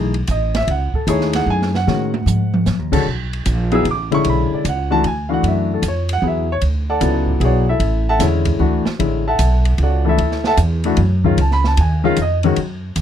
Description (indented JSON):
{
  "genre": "modal jazz",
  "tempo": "151 BPM",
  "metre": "3/4",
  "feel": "swing 66% on 8ths",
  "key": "F# dorian, B dorian from 3.1 s",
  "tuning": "A4 = 439 Hz",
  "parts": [
    { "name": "warm grand piano", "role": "accompaniment", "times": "0.0-12.6 s", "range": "D3 to E6", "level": "-18 LUFS", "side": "left 3 dB", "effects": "none" },
    { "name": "upright bass", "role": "bass", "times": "0.0-13.0 s", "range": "A1 to A2", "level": "-18 LUFS", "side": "right 1 dB", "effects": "none" },
    { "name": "open jazz drum kit", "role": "drums", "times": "0.1-13.0 s", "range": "crash cymbal, hi-hat, kick drum, ride cymbal, snare drum, toms", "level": "-26 LUFS", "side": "right 2 dB", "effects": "none" }
  ],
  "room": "little or no reverb",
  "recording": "close, detailed microphones",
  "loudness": "-15 LUFS",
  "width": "side -10 dB against mid",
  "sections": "0.0-3.1 A section; 3.1-12.6 A section",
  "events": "drum fill 1.9-2.7",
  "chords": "0.0 F#m69; 3.1 Bm9; 7.8 Dadd9; 11.4 C#",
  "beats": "0.28 | 0.68 1.08 1.47 | 1.87 2.27 2.66 | 3.06 3.45 3.85 | 4.25 4.64 5.04 | 5.43 5.83 6.23 | 6.62 7.02 7.42 | 7.81 8.21 8.60 | 9.00 9.40 9.79 | 10.19 10.58 10.98 | 11.38 11.77 12.17 | 12.56 12.96"
}